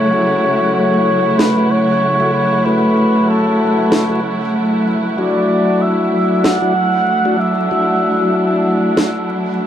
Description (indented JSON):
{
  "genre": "ambient dub",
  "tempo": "95 BPM",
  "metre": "4/4",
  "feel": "swing 55% on 16ths",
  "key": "F# minor",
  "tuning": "A4 = 441 Hz",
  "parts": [
    { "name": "trumpet with cup mute", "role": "melody", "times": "0.0-8.7 s", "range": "A4 to F#5", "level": "-17 LUFS", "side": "equal", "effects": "dub echo" },
    { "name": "warm symphonic string section", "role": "sustained chords", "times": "0.0-9.7 s", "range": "C#3 to E4", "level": "-17 LUFS", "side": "right 1 dB", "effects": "none" },
    { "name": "wind-like tuned noise texture", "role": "texture", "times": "0.0-9.7 s", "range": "F#5", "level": "-28 LUFS", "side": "right 3 dB", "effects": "built-in reverb" },
    { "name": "mellow tonewheel organ", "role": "stabs", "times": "0.1-9.1 s", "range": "F#3 to F#4", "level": "-18 LUFS", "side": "left 2 dB", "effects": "slow rotary speaker, dub echo" },
    { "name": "electronic snare drum", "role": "drums", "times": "1.4-9.1 s", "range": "none", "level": "-16 LUFS", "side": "equal", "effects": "overdrive" }
  ],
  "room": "wet spring reverb, RT60 1.5 s, studio ambience",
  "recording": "dark, warm production, vinyl crackle",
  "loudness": "-12 LUFS",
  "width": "side -10 dB against mid",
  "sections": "0.0-9.7 A section",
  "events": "none",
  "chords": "0.0 F#m7; 5.2 Dadd9/F#"
}